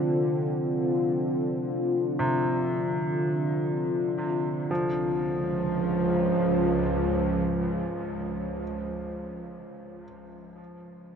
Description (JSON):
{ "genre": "dark ambient drone", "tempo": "free time", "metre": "none", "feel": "none", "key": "C# double harmonic", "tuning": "A4 = 441 Hz", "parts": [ { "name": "deep dark ambient pad", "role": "sustained chords", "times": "0.0-9.0 s", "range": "G#3 to C#5", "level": "-28 LUFS", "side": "left 2 dB", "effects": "chorus, built-in reverb" }, { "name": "bowed-like drone", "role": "drone", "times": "0.0-8.6 s", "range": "C#2 to E#3", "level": "-28 LUFS", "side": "right 2 dB", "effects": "built-in reverb" }, { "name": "bright baby grand piano", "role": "arpeggios", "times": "2.2-11.2 s", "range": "C3 to E#3", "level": "-34 LUFS", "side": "equal", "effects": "tape echo" } ], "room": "wet huge ambient reverb, RT60 8.0 s", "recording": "worn, warbling old tape, cassette tape, warbly pitch drift", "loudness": "-25 LUFS", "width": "side -7 dB against mid", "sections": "0.0-4.7 A section; 4.7-9.9 B section", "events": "none", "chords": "0.0 F; 4.7 C#", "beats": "free time" }